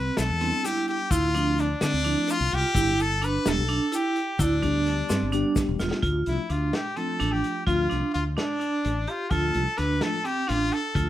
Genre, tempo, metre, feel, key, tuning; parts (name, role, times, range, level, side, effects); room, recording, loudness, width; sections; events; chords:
progressive instrumental, band music in an uneven meter; 256 BPM (eighths); 7/8; straight; D dorian; A4 = 440 Hz
brilliant trumpet; melody; 0.0-11.1 s; D4 to B4; -28 LUFS; left 2 dB
vibraphone with hard mallets; arpeggios; 0.0-11.1 s; C4 to G4; -28 LUFS; right 3 dB
mellow fretless electric bass; bass; 0.0-11.1 s; E1 to D3; -27 LUFS; left 1 dB; lush chorus
vintage drum kit; drums; 0.2-11.1 s; hi-hat, kick drum, snare drum; -30 LUFS; left 1 dB
tube shaker; percussion; 0.2-5.9 s; -38 LUFS; left 6 dB
mellow tine electric piano; accompaniment; 0.4-11.1 s; F3 to G4; -32 LUFS; left 1 dB; medium stereo tremolo
studio reverb; rough home demo mix; -23 LUFS; side -13 dB against mid
0.0-6.0 A section; 6.0-11.1 B section
drum fill 5.6-6.0
0.0 Cmaj7; 1.1 Dm7; 2.8 G; 6.0 Dm